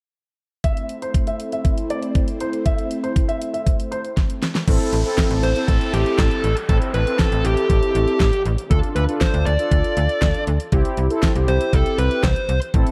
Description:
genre	synth-pop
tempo	119 BPM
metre	4/4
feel	straight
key	A minor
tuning	A4 = 439 Hz
part	clear grand piano	second line	0.6-4.0 s	C5 to E5	-30 LUFS	equal	slapback echo
part	phased analog pad	sustained chords	0.6-4.6 s	A3 to C5	-31 LUFS	equal	phaser, chorus
part	pop drum kit	drums	0.6-12.9 s	crash cymbal, hi-hat, kick drum, snare drum	-22 LUFS	equal	none
part	analog synth brass	accompaniment	4.7-12.9 s	C4 to A4	-27 LUFS	equal	chorus
part	slap-like FM bass	bass	4.7-12.8 s	A1 to D2	-23 LUFS	equal	none
part	downlifter	sound effects	4.7-8.7 s	none	-36 LUFS	equal	none
part	dark smooth lead guitar	melody	5.4-12.6 s	G4 to D5	-25 LUFS	equal	overdrive, slapback echo
room	moderate scoring stage reverb, RT60 1.9 s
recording	dark, warm production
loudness	-20 LUFS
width	mono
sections	0.6-4.7 A section; 4.7-12.9 B section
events	drum fill 4.2-4.7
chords	0.6 Am; 8.7 Dm; 10.7 C

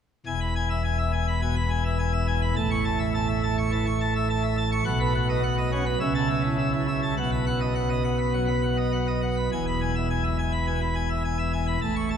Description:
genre	classical, organ toccata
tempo	104 BPM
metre	4/4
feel	straight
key	E major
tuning	A4 = 440 Hz
part	pipe organ, plenum	solo	0.3-12.2 s	E1 to C#6	-23 LUFS	equal	none
room	wet cathedral reverb, RT60 5.7 s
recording	minimal, uncompressed stereo recording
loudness	-23 LUFS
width	side -8 dB against mid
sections	0.3-12.2 A section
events	none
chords	0.3 E; 2.6 A; 4.9 B; 6.0 A/C#; 7.2 B; 9.5 E

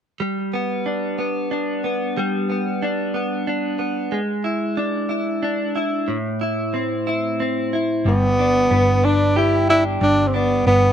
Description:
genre	pop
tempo	61 BPM (dotted quarters)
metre	6/8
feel	straight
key	G major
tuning	A4 = 440 Hz
part	direct-recorded clean electric guitar	accompaniment	0.2-10.9 s	G2 to G4	-21 LUFS	equal	double-tracked left and right, slapback echo
part	breathy tenor saxophone	melody	8.1-10.9 s	B3 to E4	-16 LUFS	equal	none
part	hollow-body short-scale fingered electric bass	bass	8.1-10.9 s	G1	-20 LUFS	equal	none
room	little or no reverb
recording	recorded outdoors, with no room sound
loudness	-18 LUFS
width	side -8 dB against mid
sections	0.2-8.1 A section; 8.1-10.9 B section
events	none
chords	0.2 G; 4.1 E7/G#; 6.1 Am; 8.1 G

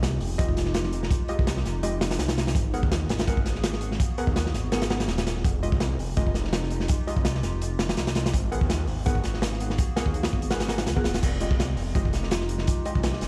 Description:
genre	drum and bass, jungle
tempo	166 BPM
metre	4/4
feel	swing 53% on 16ths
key	unclear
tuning	A4 = 440 Hz
part	warbly tape-like pad	sustained chords	0.1-13.3 s	Ab3 to Ab4	-39 LUFS	equal	chorus, built-in reverb
part	detuned saw bass	bass	0.0-13.3 s	Eb1 to Eb2	-31 LUFS	equal	none
part	crunchy breakbeat drum kit	drums	0.0-13.3 s	crash cymbal, hi-hat, kick drum, snare drum	-28 LUFS	equal	none
part	deep mellow chord stab	stabs	0.4-12.9 s	Ab3 to Gb5	-36 LUFS	equal	chorus, dub echo
room	light reverb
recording	played on a big sound system in a bare room, stone room reverb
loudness	-26 LUFS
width	mono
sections	0.0-11.2 A section; 11.2-13.3 A section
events	drop 0.0-11.2, 11.2-13.3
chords	0.0 Fm9; 2.6 Abm9; 5.4 Fm9; 8.3 Abm9; 11.2 Fm9

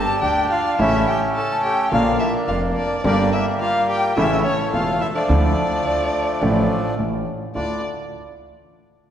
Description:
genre	tango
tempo	106 BPM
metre	4/4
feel	rubato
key	D minor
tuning	A4 = 440 Hz
part	bandoneon	melody	0.0-7.8 s	F3 to A4	-21 LUFS	equal	none
part	warm violin	second line	0.0-7.8 s	C#5 to A5	-25 LUFS	left 2 dB	none
part	warm concert grand piano	accompaniment	0.2-7.8 s	E1 to G4	-23 LUFS	equal	none
part	upright bass	bass	0.2-7.8 s	E1 to D2	-26 LUFS	right 1 dB	none
room	wet scoring stage reverb, RT60 2.0 s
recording	recorded in a church or concert hall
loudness	-17 LUFS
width	side -9 dB against mid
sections	0.0-7.6 A section; 7.6-9.1 B section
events	none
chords	0.0 G5; 0.8 A; 1.9 Bb; 3.0 Gm; 4.2 A; 5.3 Dmadd9; 7.0 N.C.; 7.6 Dmadd9

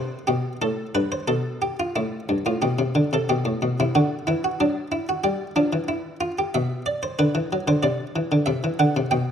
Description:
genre	classical, baroque-style suite movement for harpsichord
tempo	92 BPM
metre	4/4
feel	rubato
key	unclear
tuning	A4 = 442 Hz
part	buff-stop harpsichord	solo	0.0-9.3 s	G2 to G5	-21 LUFS	equal	none
room	moderate recital hall reverb, RT60 1.6 s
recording	close, detailed microphones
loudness	-21 LUFS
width	side -8 dB against mid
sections	0.0-9.3 A section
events	none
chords	0.0 C5; 1.3 G; 3.9 D; 5.2 Em7; 6.5 Bm; 7.8 C

